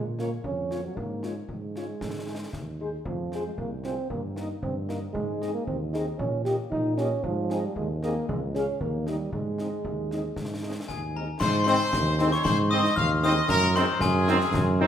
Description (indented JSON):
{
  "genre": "military-style march for wind band",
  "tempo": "115 BPM",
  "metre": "2/4",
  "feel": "straight",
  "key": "Ab major from 3.1 s",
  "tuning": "A4 = 440 Hz",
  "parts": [
    { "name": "warm euphonium", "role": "second line", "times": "0.0-10.9 s", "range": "F3 to G4", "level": "-32 LUFS", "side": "right 3 dB", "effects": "none" },
    { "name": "mellow tuba", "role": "bass", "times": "0.0-14.9 s", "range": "C2 to Bb2", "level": "-29 LUFS", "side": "right 1 dB", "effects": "none" },
    { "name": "clear trumpet section", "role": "melody", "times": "0.2-14.8 s", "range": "Ab4 to F5", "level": "-30 LUFS", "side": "equal", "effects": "none" },
    { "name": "mellow French horn section", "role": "accompaniment", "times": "0.2-14.9 s", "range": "G3 to Ab4", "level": "-33 LUFS", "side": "left 4 dB", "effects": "none" },
    { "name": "concert snare drum, concert bass drum and clash cymbals", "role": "drums", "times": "0.2-14.7 s", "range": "none", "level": "-34 LUFS", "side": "left 2 dB", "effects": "none" },
    { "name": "glockenspiel with brass mallets", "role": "second line", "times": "10.9-14.8 s", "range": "Ab5 to F6", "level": "-27 LUFS", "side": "left 4 dB", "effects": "none" },
    { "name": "warm trombone section", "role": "sustained chords", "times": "11.7-14.9 s", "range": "Eb3 to C4", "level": "-31 LUFS", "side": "right 2 dB", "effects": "none" }
  ],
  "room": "moderate recital hall reverb, RT60 1.5 s",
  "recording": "none",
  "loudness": "-25 LUFS",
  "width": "side -9 dB against mid",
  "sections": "0.0-11.4 A section; 11.4-14.9 B section",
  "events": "none",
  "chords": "0.0 Bbm; 1.0 Db/Ab; 2.0 Ab5; 3.1 Fm; 4.1 Eb/G; 5.2 Ab; 6.2 Eb/Bb; 7.2 Ab; 8.3 Db5; 8.8 Eb; 9.3 Ab; 13.5 Ab7/Gb",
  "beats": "0.45 | 0.97 1.50 | 2.02 2.54 | 3.06 3.59 | 4.11 4.63 | 5.16 5.68 | 6.20 6.72 | 7.24 7.76 | 8.29 8.81 | 9.33 9.85 | 10.37 10.89 | 11.41 11.94 | 12.46 12.98 | 13.50 14.02 | 14.54"
}